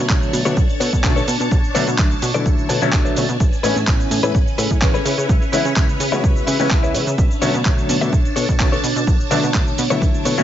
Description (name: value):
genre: filtered disco house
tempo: 127 BPM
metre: 4/4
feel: straight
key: B dorian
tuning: A4 = 440 Hz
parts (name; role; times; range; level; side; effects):
- string machine, full ensemble; sustained chords; 0.0-10.4 s; C#4 to A5; -24 LUFS; right 1 dB; phaser, ensemble chorus, sidechain pumping
- plucky analog bass; bass; 0.0-10.4 s; A1 to C#3; -23 LUFS; equal; sidechain pumping
- warm baby grand piano; accompaniment; 0.1-10.4 s; D3 to C#5; -23 LUFS; left 2 dB; phaser, vintage 12-bit sampler grit, sidechain pumping
- direct-recorded clean electric guitar; riff; 0.1-10.4 s; D4 to A5; -24 LUFS; left 6 dB; tremolo, sidechain pumping
- dusty soul sampler-style drum kit; drums; 0.1-10.4 s; cabasa, handclaps, hi-hat; -24 LUFS; right 2 dB; none
- electronic kick drum; drums; 0.1-10.1 s; none; -17 LUFS; equal; none
room: light reverb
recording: nothing above 7.7 kHz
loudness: -15 LUFS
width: side -11 dB against mid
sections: 0.0-10.4 A section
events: clean electric guitar fill 2.5-3.4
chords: 0.0 Bm9; 3.4 Amaj9; 5.1 C#m7; 7.2 Bm9